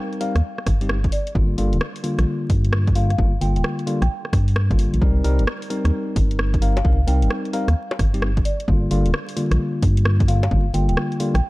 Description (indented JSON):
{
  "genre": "UK garage, two-step garage",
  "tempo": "131 BPM",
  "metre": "4/4",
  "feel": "swing 64% on 16ths",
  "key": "C minor",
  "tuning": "A4 = 440 Hz",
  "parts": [
    { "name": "bright tine electric piano", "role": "stabs", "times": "0.0-11.3 s", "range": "D3 to Bb4", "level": "-25 LUFS", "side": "left 1 dB", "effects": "digital delay" },
    { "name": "garage drum kit", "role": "drums", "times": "0.1-11.4 s", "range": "bongos, hi-hat, rim click", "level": "-28 LUFS", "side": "equal", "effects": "none" },
    { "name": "folk marimba with soft mallets", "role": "melody", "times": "0.2-11.5 s", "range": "D5 to G5", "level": "-31 LUFS", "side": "left 1 dB", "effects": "digital delay" },
    { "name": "organ-like FM bass", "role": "bass", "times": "0.4-11.4 s", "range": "D1 to G2", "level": "-19 LUFS", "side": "equal", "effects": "none" },
    { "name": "electronic kick drum", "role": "drums", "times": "0.7-10.6 s", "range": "none", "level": "-21 LUFS", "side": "equal", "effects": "none" }
  ],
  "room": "little or no reverb",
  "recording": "dark, warm production, vinyl crackle",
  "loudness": "-18 LUFS",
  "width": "side -20 dB against mid",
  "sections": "0.0-11.5 A section",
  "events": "none",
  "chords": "0.0 Cm7; 1.1 Gm7; 5.0 Cm7; 8.5 Gm7"
}